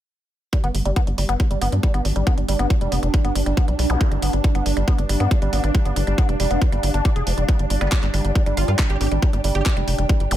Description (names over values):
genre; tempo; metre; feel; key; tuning
psychedelic trance; 138 BPM; 4/4; straight; unclear; A4 = 440 Hz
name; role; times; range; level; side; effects
swarming drone; sustained chords; 1.3-10.4 s; D4; -29 LUFS; right 3 dB; built-in reverb, sidechain pumping
woody wave-folded pluck; riff; 0.5-10.4 s; F3 to Ab4; -27 LUFS; moving between left 3 dB and right 3 dB; chorus, auto-pan, sidechain pumping, ping-pong delay
electronic kick drum; drums; 0.5-10.2 s; none; -18 LUFS; equal; overdrive, small room reverb
garage drum kit; drums; 0.5-10.4 s; handclaps, hi-hat; -30 LUFS; right 1 dB; overdrive, small room reverb
warbly tape-like pad; texture; 2.1-10.4 s; G4 to G5; -33 LUFS; left 1 dB; chorus, built-in reverb, sidechain pumping
tight sequencer bass; bass; 0.6-10.4 s; F1 to G2; -21 LUFS; equal; none
zap; sound effects; 3.9-4.0, 10.3-10.4 s; none; -30 LUFS; equal; none
metallic wobble bass; second line; 7.8-9.7 s; B3 to G4; -33 LUFS; right 4 dB; chorus, sidechain pumping, high-pass filter, ping-pong delay
room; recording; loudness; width
little or no reverb; none; -18 LUFS; side -12 dB against mid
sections
0.5-10.4 A section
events
fade-in on ambient pad 0.5-10.4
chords
0.5 G5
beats
| 0.53 0.96 1.40 1.83 | 2.27 2.70 3.14 3.57 | 4.01 4.44 4.88 5.31 | 5.75 6.18 6.62 7.05 | 7.49 7.92 8.36 8.79 | 9.22 9.66 10.09